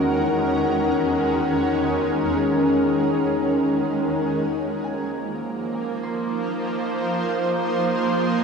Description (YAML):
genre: ambient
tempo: free time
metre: none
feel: none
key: unclear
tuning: A4 = 441 Hz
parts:
  - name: shimmering ambient pad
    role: sustained chords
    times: 0.0-8.4 s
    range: E2 to C5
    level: -20 LUFS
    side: equal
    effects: chorus, built-in reverb
  - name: Celtic harp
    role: arpeggios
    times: 0.0-8.4 s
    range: G#3 to C6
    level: -37 LUFS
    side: equal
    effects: none
room: wet plate reverb, RT60 3.7 s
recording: dreamy mix soaked in reverb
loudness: -20 LUFS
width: side -5 dB against mid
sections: 0.0-8.4 A section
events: none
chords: 0.0 Eadd9; 4.2 Fm7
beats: free time